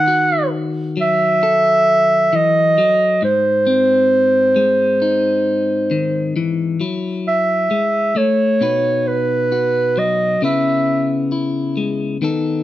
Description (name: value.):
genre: acoustic folk-pop ballad.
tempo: 67 BPM.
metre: 4/4.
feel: straight.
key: C# minor.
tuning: A4 = 440 Hz.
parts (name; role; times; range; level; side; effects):
mellow clarinet; melody; 0.0-11.3 s; B4 to F#5; -15 LUFS; right 2 dB; none.
clean electric guitar; accompaniment; 0.0-12.6 s; G#2 to B4; -19 LUFS; left 4 dB; none.
room: moderate large studio reverb, RT60 1.2 s.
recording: none.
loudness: -14 LUFS.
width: side -14 dB against mid.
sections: 0.0-6.8 A section; 6.8-12.6 B section.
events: none.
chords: 0.0 D#dim; 3.2 G#; 6.8 F#m7; 8.6 B; 10.4 C#m7.